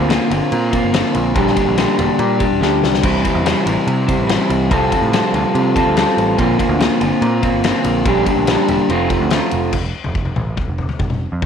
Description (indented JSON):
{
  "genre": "indie rock",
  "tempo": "143 BPM",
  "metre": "4/4",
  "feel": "straight",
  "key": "unclear",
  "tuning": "A4 = 440 Hz",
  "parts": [
    { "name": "electric guitar through a small old amp", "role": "riff", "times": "0.0-9.7 s", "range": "Bb2 to A4", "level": "-15 LUFS", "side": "equal", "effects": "none" },
    { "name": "overdriven picked electric bass", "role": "bass", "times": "0.0-11.5 s", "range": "E1 to C3", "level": "-20 LUFS", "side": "right 1 dB", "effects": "none" },
    { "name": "loose indie drum kit", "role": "drums", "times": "0.1-11.5 s", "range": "crash cymbal, kick drum, ride cymbal, snare drum, toms", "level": "-21 LUFS", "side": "left 2 dB", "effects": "none" }
  ],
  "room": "light reverb, small room reverb",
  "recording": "1960s-style stereo",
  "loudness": "-14 LUFS",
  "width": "side -7 dB against mid",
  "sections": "0.0-9.7 A section; 9.7-11.5 B section",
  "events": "drum fill 2.6-3.0",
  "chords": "0.0 Bbadd9; 1.4 Gm; 3.0 C; 4.7 Fadd9/C; 6.4 Bbadd9; 8.1 Gm/Bb; 8.9 F; 9.7 N.C."
}